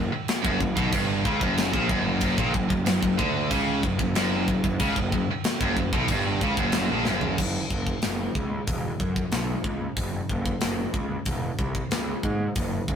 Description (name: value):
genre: heavy metal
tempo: 93 BPM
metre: 4/4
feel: straight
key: F# phrygian dominant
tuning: A4 = 440 Hz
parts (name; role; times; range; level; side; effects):
- high-gain distorted guitar; riff; 0.0-7.4 s; F#2 to D3; -28 LUFS; right 4 dB; distortion
- tight distorted guitar; riff; 0.0-7.4 s; F#2 to D3; -29 LUFS; left 5 dB; distortion
- fuzz picked electric bass; bass; 0.0-13.0 s; E1 to G#2; -28 LUFS; equal; overdrive
- tight metal drum kit; drums; 0.3-13.0 s; crash cymbal, hi-hat, kick drum, snare drum, toms; -27 LUFS; equal; none
room: light reverb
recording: rough rehearsal-room recording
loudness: -23 LUFS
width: side -8 dB against mid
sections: 0.0-7.4 A section; 7.4-13.0 B section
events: drum fill 7.1-7.4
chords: 0.0 F#; 7.4 F#5; 11.9 C#5